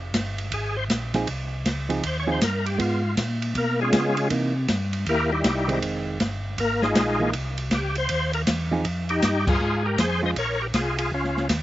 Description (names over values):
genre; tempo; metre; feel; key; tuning
soul jazz organ trio; 158 BPM; 4/4; swing 65% on 8ths; F minor; A4 = 440 Hz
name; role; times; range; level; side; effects
mellow tonewheel organ; bass; 0.0-11.6 s; F1 to Db3; -27 LUFS; equal; chorus vibrato, slow rotary speaker
open jazz drum kit; drums; 0.1-11.6 s; crash cymbal, hi-hat, kick drum, ride cymbal, snare drum; -27 LUFS; equal; none
percussive tonewheel organ; melody; 0.5-11.5 s; G3 to Eb5; -24 LUFS; left 1 dB; overdrive, chorus vibrato, fast rotary speaker
hollow-body jazz guitar; accompaniment; 1.1-10.3 s; D#3 to Ab4; -27 LUFS; right 3 dB; slapback echo
room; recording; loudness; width
little or no reverb; recorded outdoors, with no room sound, nothing above 7.8 kHz; -22 LUFS; side -14 dB against mid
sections
0.0-8.8 A section; 8.8-11.6 B section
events
tonewheel organ solo 0.0-8.8; band accent 9.4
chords
0.0 Fm7; 2.8 Db7; 4.3 C7#9; 5.8 Fm7; 7.3 C; 8.8 Fm7; 10.4 Bbm7